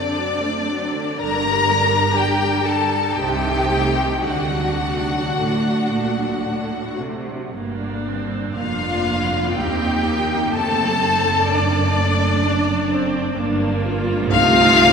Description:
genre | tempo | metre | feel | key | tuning
classical, slow romantic movement for string orchestra | 53-65 BPM | 3/4 | rubato | G minor | A4 = 443 Hz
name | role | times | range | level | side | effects
rich chamber violin section | melody | 0.0-14.9 s | D5 to Bb5 | -20 LUFS | left 4 dB | none
rich chamber violin section | second line | 0.0-14.9 s | D4 to Bb4 | -24 LUFS | left 1 dB | none
rich chamber viola section | accompaniment | 0.0-14.9 s | C3 to F4 | -24 LUFS | right 2 dB | none
rich chamber cello section | bass | 1.2-14.9 s | Eb2 to D3 | -25 LUFS | right 3 dB | none
warm chamber double bass section | bass | 1.2-14.9 s | F1 to Eb2 | -26 LUFS | right 3 dB | none
room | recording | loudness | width
wet cathedral reverb, RT60 4.5 s | none | -17 LUFS | side -6 dB against mid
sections
0.0-14.9 A section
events
none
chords
0.0 D7; 1.2 Gm; 3.2 Adim/C; 4.3 D; 7.6 Gm; 9.6 Cm/Eb; 10.6 D7/F#; 13.4 Gm; 14.3 Adim/C

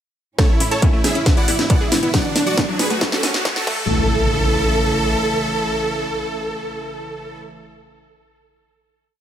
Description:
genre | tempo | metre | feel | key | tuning
uplifting trance | 137 BPM | 4/4 | straight | A major | A4 = 441 Hz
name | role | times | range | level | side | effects
supersaw chords | melody | 0.4-7.4 s | D4 to F#5 | -21 LUFS | right 1 dB | sidechain pumping, tape echo
warm chamber string section | sustained chords | 0.4-7.4 s | G#2 to A4 | -26 LUFS | right 1 dB | sidechain pumping
analog pluck | arpeggios | 0.4-4.1 s | F#3 to A5 | -26 LUFS | left 2 dB | chorus, sidechain pumping, tape echo
electronic kick drum | drums | 0.4-3.8 s | none | -18 LUFS | equal | distortion, overdrive
techno drum kit | drums | 0.4-3.8 s | crash cymbal, hi-hat, rim click, snare drum | -21 LUFS | equal | overdrive
riser and impact | sound effects | 1.6-7.4 s | none | -27 LUFS | equal | none
tight sequencer bass | bass | 0.6-5.2 s | E1 to F#2 | -25 LUFS | equal | sidechain pumping, high-pass filter
room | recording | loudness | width
light reverb | high-pass filter | -16 LUFS | side -10 dB against mid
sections
0.4-3.9 build; 3.9-7.4 final hit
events
build-up 0.4-3.9; drum fill 0.4-3.9; filter sweep 0.4-3.9; riser 1.6-3.9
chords
0.4 A; 1.3 E; 2.1 D/F#; 3.0 F#m; 3.7 A

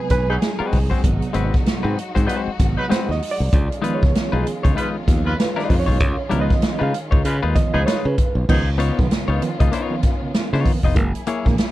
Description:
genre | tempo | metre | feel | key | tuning
funk | 97 BPM | 4/4 | swing 60% on 16ths | unclear | A4 = 440 Hz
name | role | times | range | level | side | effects
warm studio string section | sustained chords | 0.0-11.7 s | Eb3 to Ab4 | -30 LUFS | left 1 dB | none
barky reed electric piano | stabs | 0.0-11.5 s | C3 to F5 | -25 LUFS | right 5 dB | fast tremolo
modern bright fingered electric bass | bass | 0.1-11.6 s | F1 to Db3 | -21 LUFS | equal | none
swinging big-band drum kit | drums | 0.1-11.7 s | crash cymbal, hi-hat, kick drum, snare drum | -20 LUFS | equal | none
clear horn section | second line | 0.3-8.7 s | F3 to B4 | -24 LUFS | equal | none
semi-hollow electric guitar | accompaniment | 0.6-11.5 s | Ab3 to Eb5 | -24 LUFS | left 6 dB | none
room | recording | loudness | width
little or no reverb | none | -17 LUFS | side -15 dB against mid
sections
0.0-8.5 A section; 8.5-11.7 B section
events
reed electric piano solo 0.0-8.5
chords
0.0 Ab7#9; 3.5 Db9; 11.0 Gb9

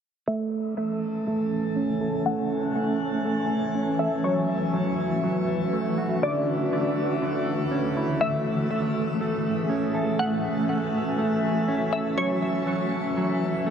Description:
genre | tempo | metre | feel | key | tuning
hip hop | 121 BPM | 4/4 | half-time | A major | A4 = 440 Hz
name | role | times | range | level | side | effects
glassy wavetable pluck | melody | 0.3-12.6 s | C#5 to F#5 | -31 LUFS | left 2 dB | chorus, low-pass filter, tape echo
granular cloud pad | sustained chords | 0.8-13.7 s | D3 to G#5 | -26 LUFS | left 1 dB | built-in reverb, low-pass filter
mellow electric guitar | arpeggios | 0.3-13.7 s | D3 to A4 | -27 LUFS | right 3 dB | low-pass filter, tape echo
room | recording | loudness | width
wet shimmer reverb, RT60 3.8 s | none | -23 LUFS | side -8 dB against mid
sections
0.3-13.7 A section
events
filter sweep 0.3-13.7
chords
0.3 Amaj7; 4.2 F#m7; 6.2 Dmaj9; 8.2 Amaj7; 12.2 F#m7

